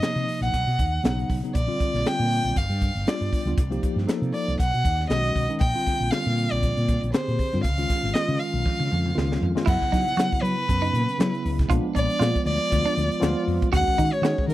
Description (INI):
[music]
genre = electric jazz fusion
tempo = 118 BPM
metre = 4/4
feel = swing 56% on 16ths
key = unclear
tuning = A4 = 440 Hz
[part]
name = rich violin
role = melody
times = 0.0-14.5 s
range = A#4 to G5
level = -27 LUFS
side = equal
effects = none
[part]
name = tine electric piano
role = accompaniment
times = 0.0-14.5 s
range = C3 to A4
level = -28 LUFS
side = left 1 dB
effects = medium stereo tremolo
[part]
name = crisp fusion drum kit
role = drums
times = 0.0-14.5 s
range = crash cymbal, hi-hat, kick drum, snare drum, toms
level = -26 LUFS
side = equal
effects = none
[part]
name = mellow fretless electric bass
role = bass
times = 0.2-14.5 s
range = G1 to F#3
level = -25 LUFS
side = equal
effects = none
[part]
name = clean electric guitar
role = stabs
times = 9.7-14.4 s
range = D4 to F#4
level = -30 LUFS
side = right 9 dB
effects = lush chorus
[sound]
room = studio reverb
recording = none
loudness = -21 LUFS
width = side -15 dB against mid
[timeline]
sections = 0.0-9.7 A section; 9.7-14.5 B section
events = drum fill 8.6-9.7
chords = 0.0 Cm7; 0.5 Badd9; 1.5 Bb6; 2.6 G7; 3.6 Cm7; 4.6 Badd9; 5.6 Bb13; 7.6 Dbadd9; 9.7 F#7sus4; 11.7 A#7b9; 13.7 D#m7